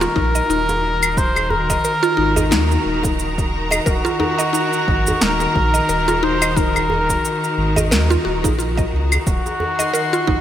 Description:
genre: organic downtempo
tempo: 89 BPM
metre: 4/4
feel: swing 56% on 16ths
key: Eb dorian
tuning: A4 = 440 Hz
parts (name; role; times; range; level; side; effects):
- trumpet with cup mute; melody; 0.0-10.4 s; Gb4 to C5; -21 LUFS; equal; digital delay
- muted studio string section; sustained chords; 0.0-10.4 s; Eb3 to C6; -23 LUFS; left 1 dB; sidechain pumping
- mallet-like synth pluck; arpeggios; 0.0-10.4 s; Eb4 to Eb5; -23 LUFS; equal; chorus, digital delay
- warm sub bass; bass; 0.0-10.4 s; Eb1 to Eb2; -22 LUFS; equal; tube saturation
- electronic shaker, claves and snare drum; drums; 0.0-10.3 s; none; -22 LUFS; equal; gated reverb
- djembe; percussion; 0.0-9.9 s; none; -28 LUFS; right 2 dB; none
- electronic kick drum; drums; 0.2-10.4 s; none; -22 LUFS; equal; none
room: wet lush hall reverb, RT60 2.7 s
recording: bright 1980s-style digital production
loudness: -15 LUFS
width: side -11 dB against mid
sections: 0.0-10.4 A section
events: none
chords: 0.0 Ebm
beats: 0.50 | 1.18 1.85 2.52 3.20 | 3.87 4.55 5.22 5.89 | 6.57 7.24 7.92 8.59 | 9.27 9.94

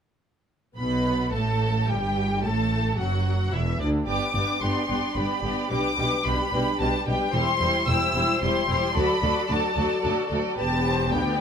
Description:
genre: quick classical-period movement for string orchestra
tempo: 110 BPM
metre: 3/4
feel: straight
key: G major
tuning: A4 = 444 Hz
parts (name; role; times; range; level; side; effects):
- rich studio violin section; melody; 0.8-11.4 s; D5 to E6; -27 LUFS; left 1 dB; none
- warm studio violin section; second line; 0.8-11.4 s; D4 to D5; -29 LUFS; left 1 dB; none
- warm symphonic viola section; accompaniment; 0.8-11.4 s; D3 to G4; -29 LUFS; left 1 dB; none
- rich symphonic cello section; bass; 0.8-11.4 s; D2 to B2; -30 LUFS; right 1 dB; none
- rich symphonic double bass section; bass; 0.8-11.4 s; E1 to D2; -29 LUFS; right 1 dB; none
room: light reverb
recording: minimal, uncompressed stereo recording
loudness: -22 LUFS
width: side -7 dB against mid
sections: 0.8-11.4 A section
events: none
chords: 0.8 G; 2.4 D; 4.1 G; 5.7 G/B; 7.3 C/E; 9.0 D; 10.6 Em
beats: | 0.79 1.34 1.89 | 2.44 2.99 3.54 | 4.08 4.62 5.17 | 5.71 6.26 6.80 | 7.34 7.88 8.42 | 8.96 9.50 10.04 | 10.58 11.13

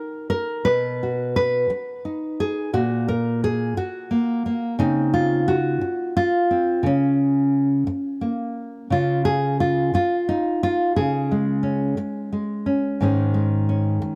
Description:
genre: folk, solo fingerstyle acoustic guitar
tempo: 58 BPM (dotted quarters)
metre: 6/8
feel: straight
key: Db major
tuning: A4 = 441 Hz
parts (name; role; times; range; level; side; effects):
- nylon-string guitar; solo; 0.0-14.2 s; Ab2 to Cb5; -22 LUFS; equal; none
room: light reverb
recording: close, detailed microphones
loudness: -22 LUFS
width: mono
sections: 0.0-8.9 A section; 8.9-14.2 B section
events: none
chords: 0.0 Eb5; 0.7 Cb; 2.7 N.C.; 4.8 Dbmaj7; 6.8 Db5; 8.9 Db; 13.0 Absus4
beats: | 0.66 1.71 | 2.73 3.77 | 4.79 5.81 | 6.83 7.86 | 8.91 9.95 | 10.97 11.99 | 13.01 14.02

